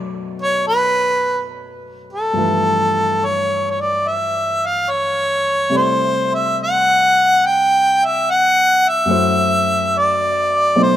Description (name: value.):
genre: jazz ballad.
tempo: 71 BPM.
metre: 4/4.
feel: swing 69% on 8ths.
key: B minor.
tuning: A4 = 442 Hz.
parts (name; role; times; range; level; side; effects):
warm concert grand piano; accompaniment; 0.0-11.0 s; F#2 to D5; -23 LUFS; left 1 dB; none.
warm harmonica; melody; 0.4-11.0 s; A4 to G5; -15 LUFS; equal; none.
room: moderate plate reverb, RT60 2.9 s.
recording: minimal, uncompressed stereo recording.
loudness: -14 LUFS.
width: side -12 dB against mid.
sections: 0.0-11.0 A section.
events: none.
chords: 0.0 Bm7; 2.3 G13; 5.7 C69; 9.1 F#m7b5.